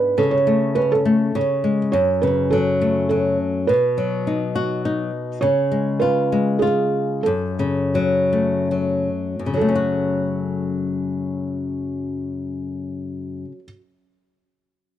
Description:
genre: children's music, lullaby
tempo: 66-104 BPM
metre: 3/4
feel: straight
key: F# minor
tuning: A4 = 440 Hz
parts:
  - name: felt-muted upright piano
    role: melody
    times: 0.0-13.6 s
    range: G#4 to C#5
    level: -21 LUFS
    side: right 4 dB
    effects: none
  - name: flamenco guitar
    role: accompaniment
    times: 0.0-13.8 s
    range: F#2 to F#4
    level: -20 LUFS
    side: left 3 dB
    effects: none
room: small room ambience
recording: dry, close 1970s-style studio recording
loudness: -18 LUFS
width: side -11 dB against mid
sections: 0.0-9.6 A section; 9.6-15.0 B section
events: slowing down 5.4-9.6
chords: 0.2 A/C#; 1.3 C#5; 1.9 F#m; 3.7 B; 5.4 C#7; 7.3 F#m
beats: | 0.17 0.75 1.34 | 1.93 2.52 3.11 | 3.69 4.27 4.85 | 5.42 6.01 6.62 | 7.26 7.95 8.71 | 9.56 10.47 11.37 | 12.26 13.16

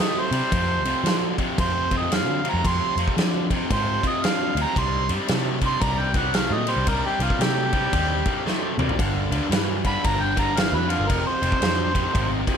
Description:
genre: blues rock power trio and southern rock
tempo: 114 BPM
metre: 4/4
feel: swing 62% on 8ths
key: C minor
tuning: A4 = 439 Hz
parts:
  - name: warm harmonica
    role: melody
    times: 0.0-12.3 s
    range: F4 to C6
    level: -26 LUFS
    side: right 2 dB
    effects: overdrive, tape echo
  - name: distorted electric guitar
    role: riff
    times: 0.0-12.6 s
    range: F2 to A3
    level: -26 LUFS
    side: left 2 dB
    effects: overdrive
  - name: huge arena drum kit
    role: drums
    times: 0.0-12.6 s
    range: kick drum, ride cymbal, snare drum, toms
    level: -25 LUFS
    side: equal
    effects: none
  - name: vintage muted picked electric bass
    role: bass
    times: 0.3-12.4 s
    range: F1 to F3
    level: -26 LUFS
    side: equal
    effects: none
  - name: overdriven tonewheel organ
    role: sustained chords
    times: 4.8-12.6 s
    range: B3 to C5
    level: -35 LUFS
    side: right 4 dB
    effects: none
room: light reverb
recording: none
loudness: -20 LUFS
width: side -7 dB against mid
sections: 0.0-12.6 A section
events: harmonica solo 0.0-12.6; drum fill 8.5-9.0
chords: 0.0 Cm; 0.5 F5; 4.8 Cm7; 9.0 G7#9; 11.1 Fm7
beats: | 0.52 1.05 1.58 2.11 | 2.64 3.17 3.70 4.23 | 4.76 5.29 5.81 6.34 | 6.87 7.40 7.93 8.46 | 8.98 9.51 10.04 10.57 | 11.09 11.62 12.15

